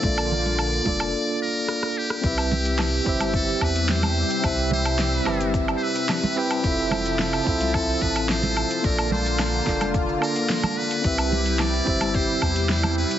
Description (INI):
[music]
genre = sunset chillout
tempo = 109 BPM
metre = 4/4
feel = straight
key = C major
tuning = A4 = 440 Hz
[part]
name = trumpet with metal mute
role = melody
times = 0.0-13.2 s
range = G4 to D5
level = -26 LUFS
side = equal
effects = ping-pong delay
[part]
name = mellow tine electric piano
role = accompaniment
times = 0.0-13.2 s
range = Bb3 to G5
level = -26 LUFS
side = equal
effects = auto-pan
[part]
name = lush unison pad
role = sustained chords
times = 0.0-13.2 s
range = C3 to A5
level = -29 LUFS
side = equal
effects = chorus, phaser
[part]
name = warm sub bass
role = bass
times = 0.0-13.0 s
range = F1 to E2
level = -27 LUFS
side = equal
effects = none
[part]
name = deep house drum kit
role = drums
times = 0.0-13.2 s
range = hi-hat, rim click, shaker, snare drum, woodblock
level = -29 LUFS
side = equal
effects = small room ambience
[part]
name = electronic kick drum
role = drums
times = 0.0-12.5 s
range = none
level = -27 LUFS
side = equal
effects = small room ambience
[part]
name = congas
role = percussion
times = 0.0-12.9 s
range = none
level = -31 LUFS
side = right 3 dB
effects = none
[sound]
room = light reverb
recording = heavily compressed radio sound, multiband compression, nothing above 7.8 kHz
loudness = -20 LUFS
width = side -11 dB against mid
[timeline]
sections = 0.0-2.2 A section; 2.2-13.2 B section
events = break 1.1-2.2; drum fill 1.7-2.2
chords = 0.0 Bbmaj7; 2.2 Cmaj7; 6.6 Fmaj7; 8.8 Bbmaj7; 11.0 Cmaj7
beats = | 0.04 0.59 1.14 1.69 | 2.24 2.79 3.34 3.89 | 4.44 4.99 5.54 6.09 | 6.64 7.19 7.74 8.29 | 8.84 9.39 9.94 10.49 | 11.04 11.60 12.15 12.70